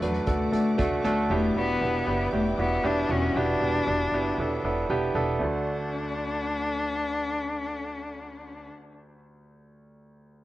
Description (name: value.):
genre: piano-driven pop.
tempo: 117 BPM.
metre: 4/4.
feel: straight.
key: D major.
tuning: A4 = 437 Hz.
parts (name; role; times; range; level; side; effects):
rich cello; melody; 0.0-8.7 s; F#3 to D4; -28 LUFS; left 2 dB; cassette tape.
clear concert grand piano; accompaniment; 0.0-10.4 s; D2 to B4; -28 LUFS; right 2 dB; cassette tape.
clear studio string section; sustained chords; 0.0-8.7 s; D3 to D6; -41 LUFS; left 1 dB; cassette tape.
upright bass; bass; 0.0-8.7 s; E1 to E2; -33 LUFS; equal; none.
unplugged drum kit; drums; 0.0-1.2 s; hi-hat, kick drum; -32 LUFS; equal; cassette tape.
room: moderate booth ambience, RT60 0.2 s.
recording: home recording on cassette.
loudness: -24 LUFS.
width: side -15 dB against mid.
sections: 0.0-5.4 A section; 5.4-9.5 B section.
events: none.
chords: 0.0 D; 1.3 Em7; 5.4 D.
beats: 0.28 0.79 | 1.30 1.81 2.33 2.84 | 3.35 3.87 4.38 4.90 | 5.41 5.92 6.44 6.95 | 7.47 7.98 8.49 9.01.